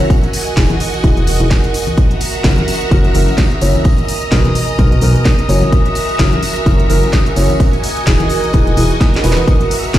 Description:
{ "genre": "piano house", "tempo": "128 BPM", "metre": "4/4", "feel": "swing 56% on 16ths", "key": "F# mixolydian", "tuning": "A4 = 440 Hz", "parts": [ { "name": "string machine, violins", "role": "sustained chords", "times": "0.0-10.0 s", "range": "F#4 to D#6", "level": "-22 LUFS", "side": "equal", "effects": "ensemble chorus, sidechain pumping" }, { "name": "dark grand piano", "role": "riff", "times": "0.0-10.0 s", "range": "B2 to C#5", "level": "-19 LUFS", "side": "equal", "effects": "sidechain pumping, tape echo" }, { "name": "house drum kit", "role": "drums", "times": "0.0-10.0 s", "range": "hi-hat, snare drum", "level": "-22 LUFS", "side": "equal", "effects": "small room ambience" }, { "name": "congas and tambourine", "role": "percussion", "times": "0.0-10.0 s", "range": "none", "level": "-22 LUFS", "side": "left 2 dB", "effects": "none" }, { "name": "deep dark ambient pad", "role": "texture", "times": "0.0-10.0 s", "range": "A#4 to D#6", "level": "-21 LUFS", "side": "right 4 dB", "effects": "chorus, built-in reverb, sidechain pumping" }, { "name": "electronic kick drum", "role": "drums", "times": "0.1-10.0 s", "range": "none", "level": "-13 LUFS", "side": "equal", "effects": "small room ambience" }, { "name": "organ-like FM bass", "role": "bass", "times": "0.6-10.0 s", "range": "E1 to B1", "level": "-14 LUFS", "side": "equal", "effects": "sidechain pumping" } ], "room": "light reverb", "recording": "played on a big sound system in a bare room, large studio reverb", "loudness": "-10 LUFS", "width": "side -13 dB against mid", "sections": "0.0-10.0 A section", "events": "drum fill 9.0-9.5", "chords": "0.1 Emaj9; 2.0 F#7; 3.9 Bmaj7; 5.5 F#7; 7.6 Emaj9; 9.5 F#7", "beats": "| 0.10 0.57 1.04 1.51 | 1.98 2.44 2.91 3.38 | 3.85 4.32 4.79 5.26 | 5.73 6.19 6.66 7.13 | 7.60 8.07 8.54 9.01 | 9.48 9.94" }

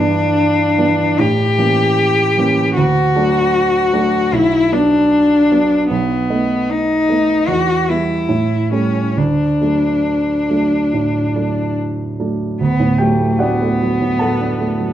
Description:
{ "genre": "classical, romantic duo for cello and grand piano", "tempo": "66-78 BPM", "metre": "4/4", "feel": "rubato", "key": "D major", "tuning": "A4 = 442 Hz", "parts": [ { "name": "clear cello", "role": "melody", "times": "0.0-14.9 s", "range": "A3 to G4", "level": "-15 LUFS", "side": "left 1 dB", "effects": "none" }, { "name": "warm baby grand piano", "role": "accompaniment", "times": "0.0-14.9 s", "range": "B1 to A5", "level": "-17 LUFS", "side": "right 2 dB", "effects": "none" } ], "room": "wet recital hall reverb, RT60 1.5 s", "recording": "dark, warm production", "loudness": "-13 LUFS", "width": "side -11 dB against mid", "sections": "0.0-12.6 A section; 12.6-14.9 B section", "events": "none", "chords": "0.0 Em7/G; 1.2 A7b9; 2.8 D; 4.3 Bm; 5.9 B7; 7.5 Em; 8.3 A7; 9.2 D", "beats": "0.36 1.19 1.98 | 2.76 3.54 4.32 5.11 | 5.90 6.69 7.49 8.30 | 9.17 10.06 10.93 11.77 | 12.61 13.41 14.21" }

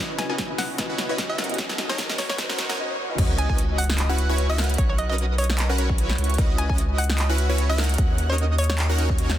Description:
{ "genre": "future bass", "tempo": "150 BPM", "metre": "4/4", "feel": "swing 56% on 16ths, half-time", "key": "C# dorian", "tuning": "A4 = 440 Hz", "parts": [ { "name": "shimmering ambient pad", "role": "sustained chords", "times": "0.2-2.8 s", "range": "C#3 to D#5", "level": "-40 LUFS", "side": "right 1 dB", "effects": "none" }, { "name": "supersaw stab", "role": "riff", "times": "0.0-9.4 s", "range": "C#4 to G#5", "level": "-29 LUFS", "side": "right 1 dB", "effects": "sidechain pumping, digital delay" }, { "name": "riser and sub drop", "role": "sound effects", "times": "0.0-4.8 s", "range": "none", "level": "-34 LUFS", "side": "equal", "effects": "none" }, { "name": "hollow square pluck", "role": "melody", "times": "0.2-9.1 s", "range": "C#5 to G#5", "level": "-32 LUFS", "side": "equal", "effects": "chorus, sidechain pumping, digital delay" }, { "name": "felt-muted upright piano", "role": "accompaniment", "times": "0.2-3.3 s", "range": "C#3 to D#5", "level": "-35 LUFS", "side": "left 3 dB", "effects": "sidechain pumping, digital delay" }, { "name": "big-room dance drum kit", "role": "drums", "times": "0.2-9.4 s", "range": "crash cymbal, handclaps, hi-hat, snare drum", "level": "-28 LUFS", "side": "equal", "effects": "none" }, { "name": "electronic kick drum", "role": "drums", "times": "0.4-9.2 s", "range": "none", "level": "-24 LUFS", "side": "equal", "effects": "none" }, { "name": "airy dreamy lead", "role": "arpeggios", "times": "3.2-9.4 s", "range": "C#5 to F#5", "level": "-34 LUFS", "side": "equal", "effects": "chorus, sidechain pumping, digital delay" }, { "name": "saturated sub bass", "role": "bass", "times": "3.2-9.4 s", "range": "B1 to D#2", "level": "-22 LUFS", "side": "equal", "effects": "sidechain pumping" } ], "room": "light reverb", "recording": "dense, heavily limited modern master, high-pass filter", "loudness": "-20 LUFS", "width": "side -12 dB against mid", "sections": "0.0-3.2 A section; 3.2-9.4 B section", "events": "build-up 0.0-3.2; drum fill 0.0-2.8; riser 0.0-2.8; filter sweep on supersaw synth 0.0-3.2; break 2.8-3.2; drop 3.2-9.4; impact 3.2-4.8", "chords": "0.0 C#m11; 1.6 D#m7; 3.2 C#m11; 4.8 Bmaj9; 6.2 C#m11; 8.0 D#m7", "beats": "0.38 0.78 1.18 | 1.58 1.98 2.38 2.78 | 3.18 3.58 3.98 4.38 | 4.78 5.18 5.58 5.98 | 6.38 6.78 7.18 7.58 | 7.98 8.38 8.78 9.18" }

